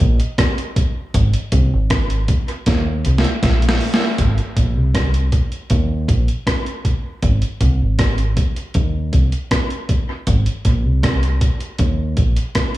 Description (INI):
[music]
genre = dub reggae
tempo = 79 BPM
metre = 4/4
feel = straight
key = Ab major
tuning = A4 = 440 Hz
[part]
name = mellow tonewheel organ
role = accompaniment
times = 0.0-4.1 s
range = none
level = barely audible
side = none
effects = none
[part]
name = deep dub fingered electric bass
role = bass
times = 0.0-12.4 s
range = Ab1 to Eb2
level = -16 LUFS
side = equal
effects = none
[part]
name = boom bap sampler-style drum kit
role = drums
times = 0.0-12.8 s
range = hi-hat, kick drum, rim click, snare drum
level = -18 LUFS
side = equal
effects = none
[sound]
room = light reverb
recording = small room ambience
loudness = -15 LUFS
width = side -16 dB against mid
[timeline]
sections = 0.0-4.2 A section; 4.2-12.8 B section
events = drum fill 2.7-4.2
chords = 0.0 Eb; 1.1 Ab; 2.7 Eb; 4.2 Ab; 5.7 Eb5; 7.2 Ab; 8.7 Cm; 10.3 Ab; 11.8 Eb5